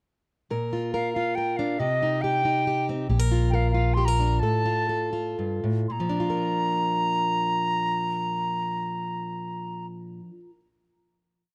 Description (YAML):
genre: indie folk with a building arrangement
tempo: 112-140 BPM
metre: 3/4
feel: straight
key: Bb major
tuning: A4 = 440 Hz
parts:
  - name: fingerpicked plugged-in steel-string acoustic guitar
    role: accompaniment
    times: 0.5-10.6 s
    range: G2 to Bb4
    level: -30 LUFS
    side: equal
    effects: none
  - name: bright wooden flute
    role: melody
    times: 0.9-9.9 s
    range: Eb5 to C6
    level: -29 LUFS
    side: equal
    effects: none
  - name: fingered electric bass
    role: bass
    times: 3.1-4.4 s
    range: Bb1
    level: -24 LUFS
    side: equal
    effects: none
room: studio reverb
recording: dry, close 1970s-style studio recording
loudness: -26 LUFS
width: mono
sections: 0.5-5.9 verse; 5.9-9.1 final chord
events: slowing down 3.1-5.9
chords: 0.5 Bb; 1.8 Cm; 3.1 Bb; 4.4 F/A; 5.9 Bb